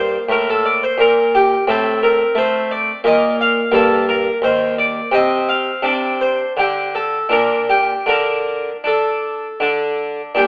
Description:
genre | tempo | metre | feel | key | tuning
classical, baroque-style suite movement for harpsichord | 76-89 BPM | 3/4 | rubato | G minor | A4 = 440 Hz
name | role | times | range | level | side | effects
harpsichord | solo | 0.0-10.5 s | Eb2 to F5 | -17 LUFS | equal | none
room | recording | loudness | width
moderate recital hall reverb, RT60 1.6 s | telephone sound | -17 LUFS | mono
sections
0.0-10.4 A section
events
none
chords
0.0 Gm; 1.7 Amadd11; 3.0 N.C.; 3.7 Eb/G; 5.1 N.C.; 5.8 Csus2; 7.3 Gm/Bb; 8.1 N.C.

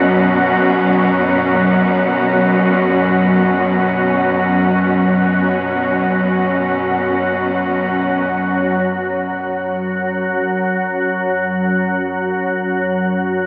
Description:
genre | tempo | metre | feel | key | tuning
dark ambient drone | free time | none | none | unclear | A4 = 441 Hz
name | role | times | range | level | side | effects
dark chamber cello section | sustained chords | 0.0-8.8 s | F#2 to C#4 | -17 LUFS | equal | shimmer reverb
organ-like drone | drone | 0.0-13.5 s | F#2 to F#3 | -15 LUFS | equal | ensemble chorus, built-in reverb
quartz singing bowl | texture | 0.0-8.8 s | none | barely audible | none | none
room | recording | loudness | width
wet cathedral reverb, RT60 7.0 s | AM radio sound | -13 LUFS | side -28 dB against mid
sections
0.0-8.7 A section; 8.7-13.5 A section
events
none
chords
0.0 B5/F#; 8.7 N.C.

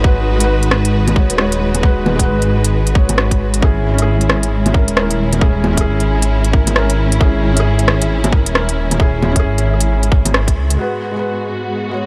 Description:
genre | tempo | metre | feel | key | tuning
future garage | 134 BPM | 4/4 | swing 61% on 16ths | G# minor | A4 = 440 Hz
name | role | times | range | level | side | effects
felt-muted upright piano | accompaniment | 0.0-12.1 s | G#3 to C#5 | -23 LUFS | equal | sidechain pumping, delay
warm symphonic string section | sustained chords | 0.0-12.1 s | G#2 to B4 | -24 LUFS | equal | sidechain pumping, low-pass filter
dark detuned saw bass | bass | 0.0-10.8 s | D#1 to C#2 | -18 LUFS | equal | sidechain pumping
electronic kick drum | drums | 0.0-10.5 s | none | -15 LUFS | equal | overdrive
organic electronic drum kit | drums | 0.4-10.8 s | bongos, hi-hat, rim click | -20 LUFS | equal | overdrive
room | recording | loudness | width
light reverb | none | -15 LUFS | mono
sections
0.0-10.8 A section; 10.8-12.1 B section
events
band accent 10.3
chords
0.0 G#m7; 3.6 C#m; 10.8 G#m7

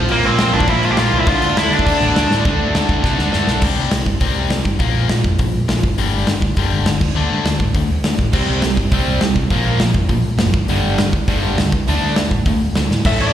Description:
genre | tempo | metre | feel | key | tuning
punk rock | 204 BPM | 4/4 | straight | D minor | A4 = 440 Hz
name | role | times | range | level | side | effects
distorted electric guitar | riff | 0.0-13.3 s | G2 to D4 | -22 LUFS | left 10 dB | overdrive, slapback echo
distorted electric guitar | riff | 0.0-3.6, 8.3-13.3 s | G2 to D4 | -21 LUFS | right 9 dB | distortion, slapback echo
picked electric bass | bass | 0.0-13.3 s | F#1 to C3 | -20 LUFS | equal | none
overdriven electric guitar | melody | 0.1-2.3, 13.1-13.3 s | Bb3 to E5 | -18 LUFS | equal | slapback echo, ping-pong delay
big rock drum kit | drums | 0.1-13.3 s | crash cymbal, hi-hat, kick drum, snare drum | -18 LUFS | equal | none
room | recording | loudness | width
little or no reverb | live gig heard through the venue's PA, recital hall reverb | -14 LUFS | side -11 dB against mid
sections
0.0-2.4 A section; 2.4-3.6 B section; 3.6-13.1 C section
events
drum fill 2.3, 3.0-3.6, 12.9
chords
0.0 Bb5; 1.3 Dm; 2.4 D5; 3.6 C5; 4.8 Bb5; 5.8 G5; 7.0 D5; 8.3 C5; 9.5 Bb5; 10.5 G5; 11.7 D5

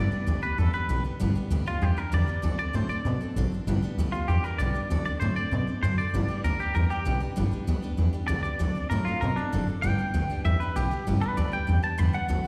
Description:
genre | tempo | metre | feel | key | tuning
rockabilly | 195 BPM | 4/4 | straight | G major | A4 = 441 Hz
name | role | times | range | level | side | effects
twangy electric guitar | melody | 0.0-12.5 s | D4 to B5 | -33 LUFS | equal | plate reverb, slapback echo, analog delay
picked steel-string acoustic guitar | accompaniment | 0.0-12.5 s | G2 to A4 | -35 LUFS | equal | plate reverb, slapback echo
upright bass | bass | 0.0-12.5 s | F#1 to B2 | -29 LUFS | equal | none
room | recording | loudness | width
light reverb | live gig heard through the venue's PA, recital hall reverb | -27 LUFS | mono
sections
0.0-1.2 A section; 1.2-11.1 B section; 11.1-12.5 B section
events
clean electric guitar solo 1.2-12.5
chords
0.0 G; 2.4 D7; 3.7 G; 4.9 D7; 6.1 G; 8.6 D7; 9.8 G

